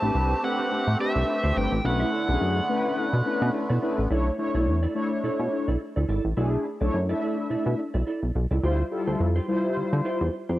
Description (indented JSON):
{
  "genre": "funk",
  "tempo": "106 BPM",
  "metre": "4/4",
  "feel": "swing 56% on 16ths",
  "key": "unclear",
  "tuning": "A4 = 436 Hz",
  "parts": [
    { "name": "biting lead guitar", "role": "melody", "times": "0.0-3.5 s", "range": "E5 to A5", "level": "-28 LUFS", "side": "right 1 dB", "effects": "overdrive" },
    { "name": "mellow synth brass", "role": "accompaniment", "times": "0.0-10.2 s", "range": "G3 to E5", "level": "-27 LUFS", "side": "left 2 dB", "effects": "chorus" },
    { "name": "musette accordion", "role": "sustained chords", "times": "0.0-4.1 s", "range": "D3 to G4", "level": "-32 LUFS", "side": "right 2 dB", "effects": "none" },
    { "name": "mellow electric guitar", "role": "riff", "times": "0.0-10.6 s", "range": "D4 to E5", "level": "-33 LUFS", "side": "right 3 dB", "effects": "ensemble chorus" },
    { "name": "chorused synth bass", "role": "bass", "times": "0.0-10.6 s", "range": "G1 to D3", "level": "-24 LUFS", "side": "equal", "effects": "none" }
  ],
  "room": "light reverb, digital ambience",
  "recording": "home recording on cassette",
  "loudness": "-23 LUFS",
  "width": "side -15 dB against mid",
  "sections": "0.0-4.1 A section; 4.1-10.6 B section",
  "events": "none",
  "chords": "0.0 Am11; 1.8 Bm11; 8.6 Dm11"
}